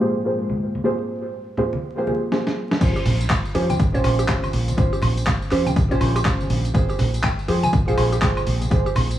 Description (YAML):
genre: deep house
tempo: 122 BPM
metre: 4/4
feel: swing 61% on 16ths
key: Bb dorian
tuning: A4 = 440 Hz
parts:
  - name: dark analog pad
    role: sustained chords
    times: 0.0-2.3 s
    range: Ab3 to G5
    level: -28 LUFS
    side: left 2 dB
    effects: chorus, sidechain pumping
  - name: deep mellow chord stab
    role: stabs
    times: 0.0-9.2 s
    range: Bb3 to C5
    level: -24 LUFS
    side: right 1 dB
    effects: chorus, sidechain pumping, analog delay
  - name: congas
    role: percussion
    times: 0.5-9.1 s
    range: none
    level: -28 LUFS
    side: equal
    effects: sidechain pumping on perc
  - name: dusty soul sampler-style drum kit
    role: drums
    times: 2.3-9.2 s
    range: crash cymbal, handclaps, hi-hat, snare drum, tambourine, woodblock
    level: -27 LUFS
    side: left 1 dB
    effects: studio reverb
  - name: electronic kick drum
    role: drums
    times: 2.8-8.8 s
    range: none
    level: -21 LUFS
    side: equal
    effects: studio reverb
  - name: mallet-like synth pluck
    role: arpeggios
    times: 3.0-8.9 s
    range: G4 to Ab5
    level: -30 LUFS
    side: left 2 dB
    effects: chorus, sidechain pumping, analog delay
  - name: deep dub fingered electric bass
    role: bass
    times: 3.1-9.1 s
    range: Bb1 to F2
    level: -21 LUFS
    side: equal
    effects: sidechain pumping
room: light reverb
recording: vinyl crackle, low-pass filter, small room ambience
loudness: -18 LUFS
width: side -12 dB against mid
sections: 0.0-2.8 A section; 2.8-9.2 B section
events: filter sweep on synth stab 0.0-2.8; filter sweep 0.0-2.8; drum fill 2.3-2.8; drop 2.8-9.2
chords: 0.0 Fmadd9; 2.8 Bbm69; 6.7 Fmadd9/Bb